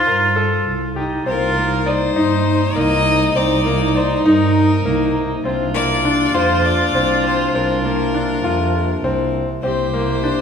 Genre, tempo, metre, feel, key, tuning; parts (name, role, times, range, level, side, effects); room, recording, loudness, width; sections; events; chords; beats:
contemporary instrumental, chamber music in an uneven meter; 201 BPM (eighths); 7/8; straight; C minor; A4 = 440 Hz
clear violin; melody; 0.0-10.4 s; Bb4 to Eb5; -22 LUFS; left 5 dB
rich viola; second line; 0.0-10.4 s; Eb4 to G4; -21 LUFS; right 2 dB
dark double bass; bass; 0.0-10.4 s; C2 to G2; -21 LUFS; right 3 dB
bright concert grand piano; arpeggios; 0.1-10.4 s; Bb3 to D5; -20 LUFS; left 4 dB
mellow woodwind section; sustained chords; 1.3-10.4 s; C3 to G4; -25 LUFS; left 1 dB
moderate scoring stage reverb, RT60 1.9 s; studio ambience; -15 LUFS; side -7 dB against mid
0.0-1.3 A section; 1.3-10.4 A section
0.0 Cm7; 5.5 Bbadd9/C; 9.6 C7(no3)
0.07 0.36 0.66 0.96 | 1.26 1.56 1.86 2.16 2.46 2.76 3.06 | 3.36 3.66 3.96 4.25 4.55 4.85 5.15 | 5.45 5.75 6.05 6.35 6.65 6.95 7.25 | 7.54 7.84 8.14 8.44 8.74 9.04 9.34 | 9.64 9.94 10.23